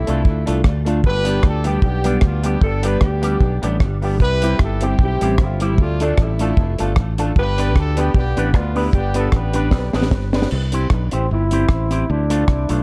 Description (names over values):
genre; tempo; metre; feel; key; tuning
ska; 152 BPM; 4/4; swing 55% on 8ths; C major; A4 = 440 Hz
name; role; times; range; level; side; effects
warm horn section; melody; 0.0-10.1 s; A3 to B4; -26 LUFS; equal; none
fingered electric bass; bass; 0.0-12.8 s; F1 to D2; -22 LUFS; equal; none
electric guitar with an envelope filter; accompaniment; 0.1-12.8 s; G3 to C5; -28 LUFS; equal; phaser, tape echo
honky-tonk upright piano; stabs; 0.1-10.5 s; A3 to B4; -30 LUFS; equal; tape echo
deep reggae drum kit; drums; 0.1-12.8 s; crash cymbal, hi-hat, kick drum, rim click, snare drum; -20 LUFS; equal; none
warm trombone; melody; 11.1-12.8 s; C4 to E4; -24 LUFS; equal; tape echo
room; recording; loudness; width
small room ambience; dark, warm production; -18 LUFS; mono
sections
0.0-10.5 A section; 10.5-12.8 B section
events
drum fill 9.7-10.5; trombone solo 10.5-12.8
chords
0.0 Dm; 1.0 G; 4.2 C; 5.8 Dm; 7.4 G; 10.5 C; 12.1 Dm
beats
0.25 0.65 | 1.04 1.44 1.83 2.23 | 2.62 3.02 3.41 3.81 | 4.20 4.59 4.99 5.38 | 5.78 6.17 6.57 6.96 | 7.36 7.75 8.15 8.54 | 8.94 9.33 9.72 10.12 | 10.51 10.91 11.30 11.69 | 12.09 12.48